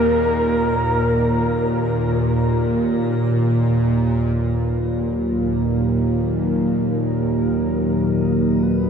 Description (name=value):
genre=dark ambient drone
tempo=free time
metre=none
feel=none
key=Eb minor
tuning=A4 = 440 Hz
part: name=mellow horn-like synth lead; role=melody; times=0.0-8.9 s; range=Bb4 to Cb5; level=-25 LUFS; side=equal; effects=chorus, shimmer reverb, diffuse ambient delay
part: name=gamelan-type bossed gongs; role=arpeggios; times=0.0-8.9 s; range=Bb2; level=-42 LUFS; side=left 1 dB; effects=none
part: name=bowed-like drone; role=drone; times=0.0-8.9 s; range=Eb2 to Bb2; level=-18 LUFS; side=right 1 dB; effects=built-in reverb
part: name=deep dark ambient pad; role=sustained chords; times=5.0-8.9 s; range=Gb3 to Gb4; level=-24 LUFS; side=left 3 dB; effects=chorus, built-in reverb
room=wet huge ambient reverb, RT60 7.8 s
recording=none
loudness=-17 LUFS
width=side -7 dB against mid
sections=0.0-4.4 A section; 4.4-8.9 B section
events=fade-in on soft synth lead 4.4-8.9; filter sweep on synth drone 4.4-8.9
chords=0.0 Eb5; 4.4 Ebm